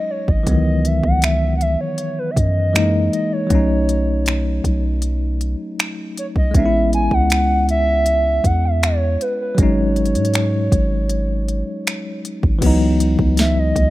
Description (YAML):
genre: contemporary R&B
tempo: 79 BPM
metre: 4/4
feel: straight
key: C# minor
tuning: A4 = 441 Hz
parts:
  - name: hollow clarinet-like synth lead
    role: melody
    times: 0.0-13.9 s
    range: B4 to G#5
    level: -21 LUFS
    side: right 1 dB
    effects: chorus, ping-pong delay
  - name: bell-like tine electric piano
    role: accompaniment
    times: 0.0-13.9 s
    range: D#3 to E4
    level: -21 LUFS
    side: left 1 dB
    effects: fast stereo tremolo
  - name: long sustained 808-style bass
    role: bass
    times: 0.3-13.9 s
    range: G#1 to G#2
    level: -18 LUFS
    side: equal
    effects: none
  - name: smooth R&B drum kit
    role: drums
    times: 0.3-13.9 s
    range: crash cymbal, finger snaps, hi-hat, kick drum, snare drum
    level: -20 LUFS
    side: equal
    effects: overdrive
room: digital ambience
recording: rough home demo mix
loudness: -15 LUFS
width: side -16 dB against mid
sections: 0.0-12.6 A section; 12.6-13.9 B section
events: break 0.0-0.5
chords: 0.5 C#m11; 2.7 F#13; 3.5 B9; 6.5 Amaj9; 9.6 G#7sus4; 12.6 C#m11